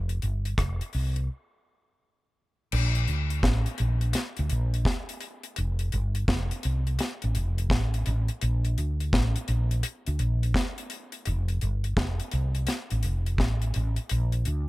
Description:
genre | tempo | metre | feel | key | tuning
roots reggae | 84 BPM | 4/4 | swing 65% on 16ths | Bb major | A4 = 440 Hz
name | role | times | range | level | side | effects
woody fretless electric bass | bass | 0.0-14.7 s | F1 to D2 | -25 LUFS | equal | analog chorus
deep reggae drum kit | drums | 0.1-14.7 s | crash cymbal, hi-hat, kick drum, rim click, snare drum | -29 LUFS | equal | none
room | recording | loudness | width
little or no reverb | none | -25 LUFS | side -19 dB against mid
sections
0.0-2.7 A section; 2.7-14.7 B section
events
break 1.3-2.7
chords
none

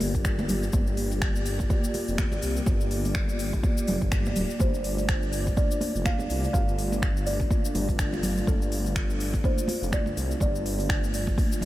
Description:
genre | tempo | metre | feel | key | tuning
afro house | 124 BPM | 4/4 | swing 58% on 16ths | G minor | A4 = 442 Hz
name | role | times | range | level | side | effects
buzzing kalimba | melody | 0.0-0.5, 4.6-11.7 s | A4 to F5 | -35 LUFS | right 2 dB | diffuse ambient delay
dark analog pad | sustained chords | 0.0-11.7 s | A3 to D5 | -33 LUFS | equal | chorus, sidechain pumping
dark detuned saw bass | bass | 0.0-11.7 s | D1 to C2 | -30 LUFS | equal | sidechain pumping
afro-pop drum kit | drums | 0.0-11.7 s | finger snaps, hi-hat, shaker | -34 LUFS | left 1 dB | none
congas | percussion | 0.0-11.7 s | none | -33 LUFS | right 1 dB | none
electronic kick drum | drums | 0.1-11.5 s | none | -26 LUFS | equal | none
room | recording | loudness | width
light reverb | none | -24 LUFS | side -15 dB against mid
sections
0.0-11.7 A section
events
none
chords
0.0 Gm7; 4.6 Dm

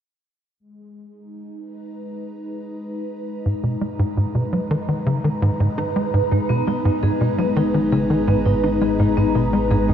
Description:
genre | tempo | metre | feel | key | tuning
ambient | 84 BPM | 4/4 | straight | G# minor | A4 = 441 Hz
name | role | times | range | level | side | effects
phased analog pad | sustained chords | 0.6-9.9 s | G#3 to A#5 | -24 LUFS | equal | phaser, chorus, shimmer reverb
tight sequencer bass | riff | 3.5-9.9 s | G#2 to D#4 | -20 LUFS | equal | analog chorus, tape echo
vibraphone with medium hard mallets | arpeggios | 6.3-9.9 s | G#3 to G#4 | -24 LUFS | moving between left 8 dB and left 1 dB | auto-pan, low-pass filter, tape echo, shimmer reverb
analog drone | bass | 7.7-9.9 s | G#1 | -29 LUFS | equal | chorus
room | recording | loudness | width
wet cathedral reverb, RT60 4.9 s | in a vast, echoing space, cassette tape | -18 LUFS | side -9 dB against mid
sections
0.6-6.3 A section; 6.3-9.9 B section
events
filter sweep on vibraphone 6.3-9.9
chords
0.6 G#m

